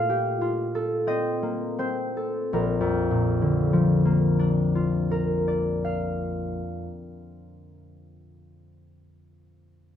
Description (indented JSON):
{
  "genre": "classical, solo harp piece",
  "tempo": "39-48 BPM",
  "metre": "3/4",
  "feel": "rubato",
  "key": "Bb major",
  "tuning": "A4 = 437 Hz",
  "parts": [
    { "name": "concert harp", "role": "solo", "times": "0.0-8.3 s", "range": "Bb1 to F5", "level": "-23 LUFS", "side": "left 1 dB", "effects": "none" }
  ],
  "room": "light reverb",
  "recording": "dark, warm production",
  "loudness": "-22 LUFS",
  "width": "side -9 dB against mid",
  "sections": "0.0-2.5 A section; 2.5-6.8 B section",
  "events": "slowing down 0.0-2.5",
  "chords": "0.0 F7/Bb; 2.5 Bb",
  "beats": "1.08 | 2.54 3.99 5.44"
}